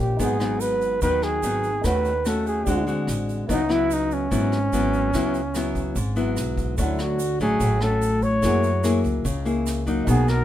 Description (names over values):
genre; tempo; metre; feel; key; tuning
bossa nova; 146 BPM; 4/4; straight; C# minor; A4 = 440 Hz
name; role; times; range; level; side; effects
breathy flugelhorn; melody; 0.0-10.4 s; C#4 to C#5; -24 LUFS; right 1 dB; none
dark baby grand piano; accompaniment; 0.0-10.4 s; A3 to A#5; -33 LUFS; right 2 dB; none
nylon-string guitar; accompaniment; 0.0-10.4 s; G#2 to G#4; -24 LUFS; left 2 dB; none
upright bass; bass; 0.0-10.4 s; G#1 to F#2; -27 LUFS; equal; none
vintage brush drum kit; drums; 0.2-10.4 s; hi-hat, kick drum, rim click; -32 LUFS; equal; none
tube shaker; percussion; 0.2-10.4 s; none; -39 LUFS; right 7 dB; none
room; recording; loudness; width
light reverb; minimal, uncompressed stereo recording; -20 LUFS; side -12 dB against mid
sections
0.0-6.8 A section; 6.8-10.4 B section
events
none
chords
0.2 G#m7; 1.8 D#m7b5; 2.7 D7#11; 3.5 C#m11; 6.8 Dmaj7; 8.4 F#9